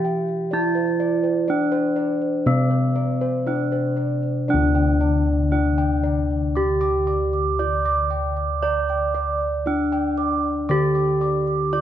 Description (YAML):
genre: Javanese gamelan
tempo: 58-64 BPM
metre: 4/4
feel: straight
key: unclear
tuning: A4 = 440 Hz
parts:
  - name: gamelan-type bronze metallophone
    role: melody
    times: 0.0-11.8 s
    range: C4-40c to D5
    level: -22 LUFS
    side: right 1 dB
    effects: none
  - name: gamelan-type bossed gongs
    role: arpeggios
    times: 0.0-11.8 s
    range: C5-40c to D6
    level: -29 LUFS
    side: left 3 dB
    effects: none
  - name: gamelan-type bronze metallophone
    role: arpeggios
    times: 0.0-11.8 s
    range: C5-40c to D6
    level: -29 LUFS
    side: right 7 dB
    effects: none
  - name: gamelan-type bossed gongs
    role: bass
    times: 0.0-11.8 s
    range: D2 to D5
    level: -24 LUFS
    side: left 2 dB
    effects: none
room: moderate scoring stage reverb, RT60 1.8 s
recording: none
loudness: -19 LUFS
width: side -10 dB against mid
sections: 0.0-4.5 A section; 4.5-11.8 B section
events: none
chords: none